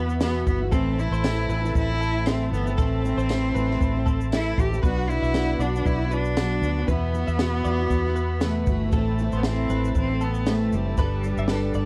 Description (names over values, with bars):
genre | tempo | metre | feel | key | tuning
acoustic pop | 117 BPM | 4/4 | swing 55% on 16ths | unclear | A4 = 440 Hz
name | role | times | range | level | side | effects
rich cello | melody | 0.0-11.9 s | G3 to G4 | -30 LUFS | equal | none
picked plugged-in steel-string acoustic guitar | accompaniment | 0.0-11.9 s | E2 to A4 | -32 LUFS | equal | double-tracked
tonewheel organ | sustained chords | 0.0-11.9 s | C4 to B5 | -40 LUFS | equal | overdrive, lush chorus
direct-recorded clean electric guitar | arpeggios | 0.0-11.9 s | A4 to E5 | -37 LUFS | equal | analog chorus
vintage muted fingered electric bass | bass | 0.0-11.9 s | F#1 to E2 | -28 LUFS | equal | none
compact cocktail drum kit | drums | 0.1-11.9 s | kick drum, shaker, snare drum | -28 LUFS | equal | none
tambourine | percussion | 0.2-11.6 s | none | -45 LUFS | equal | none
room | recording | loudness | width
little or no reverb | dry, close 1970s-style studio recording | -24 LUFS | mono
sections
0.0-11.9 A section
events
none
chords
0.0 Esus2; 0.7 Am; 4.8 Bm; 6.9 Esus2; 8.9 Am; 11.0 Gadd9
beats
0.21 | 0.72 1.24 1.75 2.26 | 2.78 3.29 3.80 4.32 | 4.83 5.34 5.85 6.37 | 6.88 7.39 7.91 8.42 | 8.93 9.44 9.96 10.47 | 10.98 11.49